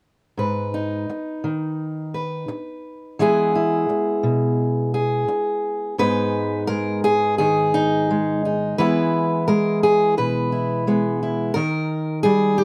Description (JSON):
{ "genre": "folk, solo fingerstyle acoustic guitar", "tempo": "86 BPM", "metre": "4/4", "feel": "rubato", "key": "G# minor", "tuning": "A4 = 440 Hz", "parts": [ { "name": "fingerpicked steel-string acoustic guitar", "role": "solo", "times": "0.4-12.6 s", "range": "G#2 to B4", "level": "-21 LUFS", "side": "equal", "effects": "none" } ], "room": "little or no reverb", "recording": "close, detailed microphones", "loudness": "-21 LUFS", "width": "mono", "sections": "0.4-6.0 A section; 6.0-12.6 B section", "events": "none", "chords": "0.4 G#m; 3.2 E; 6.0 G#m; 8.8 E; 11.5 D#" }